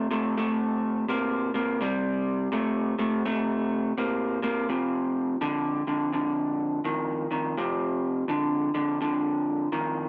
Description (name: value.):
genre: blues.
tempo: 84 BPM.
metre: 4/4.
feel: swing 63% on 8ths.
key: unclear.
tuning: A4 = 440 Hz.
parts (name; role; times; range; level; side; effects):
electric guitar through a small old amp; solo; 0.0-10.1 s; F2 to Bb3; -27 LUFS; equal; subtle chorus.
room: moderate echo chamber reverb, RT60 2.0 s.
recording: none.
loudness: -27 LUFS.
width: mono.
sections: 0.0-10.1 A section.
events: none.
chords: 0.0 C5; 4.7 F5.